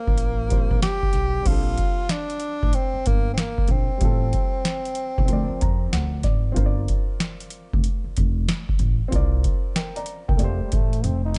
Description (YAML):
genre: hip hop, jazz-hop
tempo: 94 BPM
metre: 4/4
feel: swing 63% on 16ths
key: Bb major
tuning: A4 = 439 Hz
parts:
  - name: breathy tenor saxophone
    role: melody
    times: 0.0-6.3 s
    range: Bb3 to G4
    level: -30 LUFS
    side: equal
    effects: none
  - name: dark upright piano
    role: accompaniment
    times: 0.0-11.4 s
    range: F3 to Bb5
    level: -36 LUFS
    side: equal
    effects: none
  - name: upright bass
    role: bass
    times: 0.1-11.4 s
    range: F1 to F2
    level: -27 LUFS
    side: equal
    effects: none
  - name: booming analog drum machine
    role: drums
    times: 0.1-11.4 s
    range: crash cymbal, hi-hat, kick drum, snare drum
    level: -25 LUFS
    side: equal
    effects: none
  - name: growling trombone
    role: second line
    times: 10.4-11.4 s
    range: F3 to Eb4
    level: -35 LUFS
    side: equal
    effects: none
room: small room ambience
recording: dark, warm production, nothing above 10.5 kHz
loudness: -23 LUFS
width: mono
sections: 0.0-1.5 A section; 1.5-11.4 B section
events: upright piano fill 5.3-6.6; drum fill 11.0-11.4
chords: 0.0 Bbmaj7sus2; 1.5 Bb69; 4.0 Fadd9/A; 5.3 Bb9; 6.6 Gm11 (rootless); 9.1 C9sus4; 10.4 Fadd9